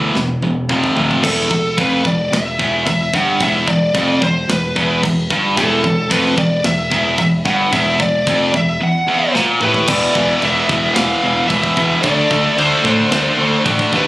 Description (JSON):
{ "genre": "heavy metal", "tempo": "111 BPM", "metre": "4/4", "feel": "straight", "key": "E minor", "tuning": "A4 = 443 Hz", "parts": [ { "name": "distorted electric guitar", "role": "riff", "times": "0.0-14.1 s", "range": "E2 to D4", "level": "-23 LUFS", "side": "left 5 dB", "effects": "overdrive" }, { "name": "tight distorted guitar", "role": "riff", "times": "0.0-14.1 s", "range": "E2 to D4", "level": "-16 LUFS", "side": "right 2 dB", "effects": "distortion" }, { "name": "growling picked electric bass", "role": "bass", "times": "0.0-14.1 s", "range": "E1 to A2", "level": "-22 LUFS", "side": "equal", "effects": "overdrive" }, { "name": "tight metal drum kit", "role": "drums", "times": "0.2-14.1 s", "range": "crash cymbal, kick drum, snare drum, toms", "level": "-22 LUFS", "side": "equal", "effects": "none" }, { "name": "high-gain lead guitar", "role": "melody", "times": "1.2-14.0 s", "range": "A4 to F#5", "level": "-18 LUFS", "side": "equal", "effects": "distortion" }, { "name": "high-gain lead guitar", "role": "second line", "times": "9.6-14.0 s", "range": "G4 to B4", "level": "-27 LUFS", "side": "equal", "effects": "distortion" } ], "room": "small room ambience", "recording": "recorded on a phone in the room, studio ambience, compression", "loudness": "-13 LUFS", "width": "side -17 dB against mid", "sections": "0.0-1.2 A section; 1.2-9.9 B section; 9.9-14.1 C section", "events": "drum fill 0.2-1.2, 9.3-9.9", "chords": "0.0 E5; 0.7 F5; 1.2 Em; 9.9 E5; 12.0 D5", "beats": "0.16 0.70 | 1.24 1.78 2.32 2.86 | 3.40 3.94 4.48 5.02 | 5.56 6.10 6.64 7.18 | 7.72 8.26 8.80 9.34 | 9.88 10.42 10.96 11.50 | 12.04 12.58 13.12 13.66" }